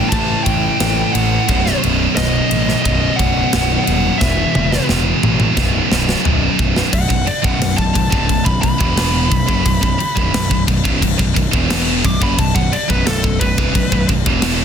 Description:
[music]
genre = heavy metal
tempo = 88 BPM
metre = 4/4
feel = straight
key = B phrygian dominant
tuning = A4 = 440 Hz
[part]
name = high-gain lead guitar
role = melody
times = 0.0-14.1 s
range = A4 to D6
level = -22 LUFS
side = equal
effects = distortion
[part]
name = scooped high-gain guitar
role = riff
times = 0.0-14.6 s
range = B1 to A3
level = -17 LUFS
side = right 1 dB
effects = distortion
[part]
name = fuzz picked electric bass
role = bass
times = 0.1-14.6 s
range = B0 to A1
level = -20 LUFS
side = equal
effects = overdrive
[part]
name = tight metal drum kit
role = drums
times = 0.1-14.6 s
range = crash cymbal, kick drum, ride cymbal, snare drum, toms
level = -18 LUFS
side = left 1 dB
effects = soft clipping on kick
[sound]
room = little or no reverb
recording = dense, heavily limited modern master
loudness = -13 LUFS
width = side -8 dB against mid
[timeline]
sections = 0.0-6.9 A section; 6.9-14.6 B section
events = drum fill 4.2-6.9; lead electric guitar solo 6.9-14.6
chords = 0.0 A5; 1.5 B; 4.2 E5; 5.6 B5

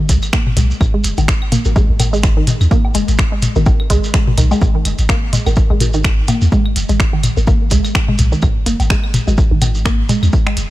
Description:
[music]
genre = minimal techno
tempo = 126 BPM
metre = 4/4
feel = swing 57% on 16ths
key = G# minor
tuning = A4 = 440 Hz
[part]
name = resonant blip pluck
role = riff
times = 0.0-10.5 s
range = D#3 to A#3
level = -21 LUFS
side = equal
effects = chorus, sidechain pumping, digital delay
[part]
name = punchy sub bass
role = bass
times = 0.0-10.7 s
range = F#1 to D#2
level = -16 LUFS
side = equal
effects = sidechain pumping
[part]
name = electronic kick drum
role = drums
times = 0.1-10.4 s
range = none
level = -15 LUFS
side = equal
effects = studio ambience
[part]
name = minimal click drum kit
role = drums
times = 0.1-10.7 s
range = finger snaps, hi-hat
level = -22 LUFS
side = right 1 dB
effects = studio ambience
[part]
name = shekere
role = percussion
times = 0.1-10.7 s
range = none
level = -26 LUFS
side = right 2 dB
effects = none
[part]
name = electronic claves, woodblock and toms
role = percussion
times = 0.2-10.5 s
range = none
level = -20 LUFS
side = left 2 dB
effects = studio ambience
[part]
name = filtered dub chord stab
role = stabs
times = 1.7-9.7 s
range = B3 to A#4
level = -28 LUFS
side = right 1 dB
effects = phaser, analog chorus, cassette tape, dub echo
[sound]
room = digital ambience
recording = faint mains hum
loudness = -12 LUFS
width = side -16 dB against mid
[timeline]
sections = 0.0-10.7 A section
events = filter sweep on synth stab 0.0-10.7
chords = 0.0 G#5

